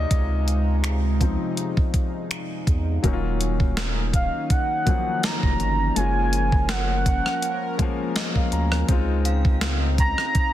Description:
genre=contemporary R&B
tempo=82 BPM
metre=4/4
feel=swing 54% on 16ths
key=Eb dorian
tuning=A4 = 442 Hz
part: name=warm grand piano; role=accompaniment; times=0.0-10.5 s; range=F3 to Bb5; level=-29 LUFS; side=left 6 dB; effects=none
part: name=chorused pulse-width pad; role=sustained chords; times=0.0-10.5 s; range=C3 to F5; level=-31 LUFS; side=right 1 dB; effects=none
part: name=saturated sub bass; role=bass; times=0.0-10.1 s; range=Eb1 to Fb2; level=-23 LUFS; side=equal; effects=none
part: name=gated 80s digital drum machine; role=drums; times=0.1-10.5 s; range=finger snaps, hi-hat, kick drum, rim click, snare drum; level=-23 LUFS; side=equal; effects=gated reverb, gated reverb snare, soft clipping on snare
part: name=gliding portamento lead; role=melody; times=4.1-10.5 s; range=F5 to Bb5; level=-25 LUFS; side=right 1 dB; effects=chorus, tape echo
part: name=synth chime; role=texture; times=9.3-10.1 s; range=F5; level=-36 LUFS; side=right 1 dB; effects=ensemble chorus, tape echo
room=little or no reverb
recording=dense, heavily limited modern master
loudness=-20 LUFS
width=side -13 dB against mid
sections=0.0-3.0 A section; 3.0-10.5 B section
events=grand piano solo 0.0-3.0; grand piano fill 7.8-8.9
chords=0.0 Dbmaj9; 3.0 Ebm9; 6.0 Gbmaj7; 8.9 Dbmaj9

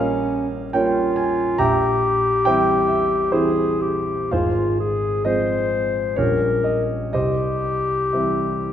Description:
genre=classical, romantic duo for clarinet and grand piano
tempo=58-71 BPM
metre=3/4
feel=rubato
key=unclear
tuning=A4 = 439 Hz
part: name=mellow clarinet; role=melody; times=0.0-8.7 s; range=Db4 to C5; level=-21 LUFS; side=left 2 dB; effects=none
part: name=warm concert grand piano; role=accompaniment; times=0.0-8.7 s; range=Ab1 to Bb5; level=-21 LUFS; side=right 2 dB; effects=none
room=wet recital hall reverb, RT60 1.6 s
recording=none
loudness=-18 LUFS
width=side -10 dB against mid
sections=0.0-8.7 A section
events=none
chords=0.0 Gm7b5/Bb; 1.6 C7/Bb; 4.3 Fm/Ab; 6.2 Gm7b5/Bb; 7.1 C

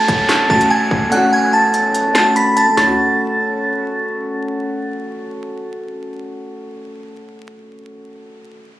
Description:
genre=hip hop, drill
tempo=145 BPM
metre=4/4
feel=half-time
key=F# minor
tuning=A4 = 441 Hz
part: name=glassy synth bell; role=melody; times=0.0-4.0 s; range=F#5 to B6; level=-15 LUFS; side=right 1 dB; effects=chorus, ping-pong delay
part: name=dark grand piano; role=accompaniment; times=0.0-8.6 s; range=A3 to F#4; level=-21 LUFS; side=equal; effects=none
part: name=downlifter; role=sound effects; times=0.0-2.8 s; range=none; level=-25 LUFS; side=equal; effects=none
part: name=drill drum kit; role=drums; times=0.1-2.9 s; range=handclaps, hi-hat, kick drum, snare drum, toms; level=-18 LUFS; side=equal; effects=none
room=light reverb, digital ambience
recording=recorded on a phone in the room, club reverb, vinyl crackle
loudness=-13 LUFS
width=side -14 dB against mid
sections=0.0-2.8 A section; 2.8-6.1 B section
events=kick muted 1.1-2.8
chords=0.0 F#m

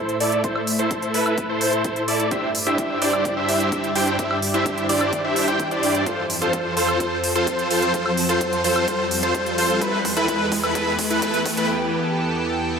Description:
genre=EDM, festival progressive house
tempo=128 BPM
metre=4/4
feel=straight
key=A minor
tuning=A4 = 440 Hz
part: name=lush unison pad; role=sustained chords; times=0.0-12.8 s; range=E2 to E5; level=-26 LUFS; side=equal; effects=chorus, sidechain pumping
part: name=wide unison lead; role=arpeggios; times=0.0-11.7 s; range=B4 to G5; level=-25 LUFS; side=equal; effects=analog chorus, sidechain pumping, digital delay
part: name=big supersaw lead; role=riff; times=0.0-11.7 s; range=D4 to G5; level=-22 LUFS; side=equal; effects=sidechain pumping, low-pass filter, digital delay
part: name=riser and reverse cymbal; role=sound effects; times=2.7-12.8 s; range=none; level=-31 LUFS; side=left 1 dB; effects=none
part: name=electronic hi-hat and woodblock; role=drums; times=0.1-11.7 s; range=none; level=-26 LUFS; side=right 1 dB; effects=none
part: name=electronic kick drum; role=drums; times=0.4-11.5 s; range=none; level=-31 LUFS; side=left 1 dB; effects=high-pass filter on kick
room=moderate huge ambient reverb, RT60 4.6 s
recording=none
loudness=-19 LUFS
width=side -6 dB against mid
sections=0.0-12.8 A section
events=build-up 0.0-12.8; filter sweep on analog synth lead 0.0-12.8; riser 2.7-11.7; drum fill 6.1-11.7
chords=0.0 Am; 2.3 Cadd9/G; 6.1 F; 9.8 Em

